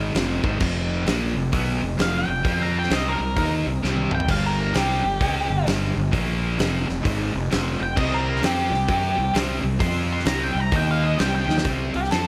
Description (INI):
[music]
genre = blues rock power trio and southern rock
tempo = 130 BPM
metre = 4/4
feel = swing 63% on 8ths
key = unclear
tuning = A4 = 440 Hz
[part]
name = sludgy distorted guitar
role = riff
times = 0.0-12.3 s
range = F2 to F#4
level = -27 LUFS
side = equal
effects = overdrive
[part]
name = fuzz fingered electric bass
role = bass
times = 0.0-12.3 s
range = F1 to F#2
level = -29 LUFS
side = equal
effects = overdrive
[part]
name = big rock drum kit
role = drums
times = 0.1-12.3 s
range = crash cymbal, hi-hat, kick drum, snare drum, toms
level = -29 LUFS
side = equal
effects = none
[part]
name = octave-fuzz lead guitar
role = melody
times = 2.0-12.3 s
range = G4 to C6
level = -28 LUFS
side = equal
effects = distortion
[sound]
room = light reverb, studio ambience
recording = none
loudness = -23 LUFS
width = mono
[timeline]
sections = 0.0-11.7 A section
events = lead electric guitar solo 0.0-11.7; drum fill 3.8-4.3, 11.4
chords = 0.2 F5; 2.9 C5; 4.3 G5; 6.1 Bb5; 6.6 F5; 8.0 C5; 9.8 F5; 10.3 C5; 10.7 Eb5; 11.2 C5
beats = 0.15 | 0.61 1.07 1.53 1.99 | 2.45 2.91 3.37 3.83 | 4.29 4.75 5.21 5.67 | 6.13 6.59 7.05 7.51 | 7.97 8.43 8.89 9.35 | 9.81 10.27 10.73 11.19 | 11.65 12.12